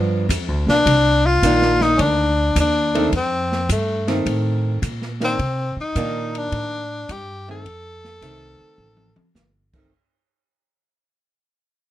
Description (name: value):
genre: jazz, small-group swing and bop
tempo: 106 BPM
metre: 4/4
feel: swing 68% on 8ths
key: unclear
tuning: A4 = 440 Hz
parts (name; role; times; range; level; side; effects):
- archtop guitar, miked and amplified; accompaniment; 0.0-9.9 s; Eb3 to D4; -23 LUFS; right 2 dB; none
- upright bass; bass; 0.0-9.9 s; G1 to C3; -22 LUFS; equal; none
- open jazz drum kit; drums; 0.3-9.8 s; crash cymbal, hi-hat, kick drum, ride cymbal, snare drum, toms; -28 LUFS; left 1 dB; none
- clear tenor saxophone; melody; 0.7-9.3 s; A3 to A4; -20 LUFS; left 2 dB; none
room: little or no reverb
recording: close, detailed microphones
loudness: -17 LUFS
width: side -13 dB against mid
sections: 0.9-9.9 A section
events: fade-out 0.9-9.9; drum fill 8.8-9.4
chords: 0.0 G7; 0.9 Cm9; 3.1 F7; 5.4 Cm9; 7.7 F7